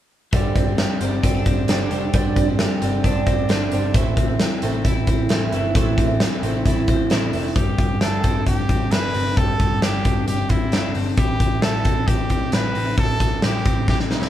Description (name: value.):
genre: jangly indie pop.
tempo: 133 BPM.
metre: 4/4.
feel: straight.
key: unclear.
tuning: A4 = 440 Hz.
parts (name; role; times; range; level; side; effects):
picked twelve-string acoustic guitar; accompaniment; 0.3-7.6 s; G2 to E4; -24 LUFS; right 5 dB; none.
twelve-string electric guitar; arpeggios; 0.3-14.3 s; E3 to E4; -27 LUFS; left 6 dB; none.
vintage muted picked electric bass; bass; 0.3-14.3 s; F1 to B1; -25 LUFS; equal; none.
big rock drum kit; drums; 0.3-14.3 s; hi-hat, kick drum, snare drum; -20 LUFS; equal; none.
brilliant trumpet; melody; 7.6-14.3 s; E4 to B4; -26 LUFS; right 1 dB; none.
room: moderate large studio reverb, RT60 0.9 s.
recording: band playing live in one room.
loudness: -17 LUFS.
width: side -12 dB against mid.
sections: 0.3-7.6 A section; 7.6-14.3 B section.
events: drum fill 13.9-14.3.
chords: 0.3 Gsus4; 3.9 Am; 7.6 Gsus4; 11.2 Am.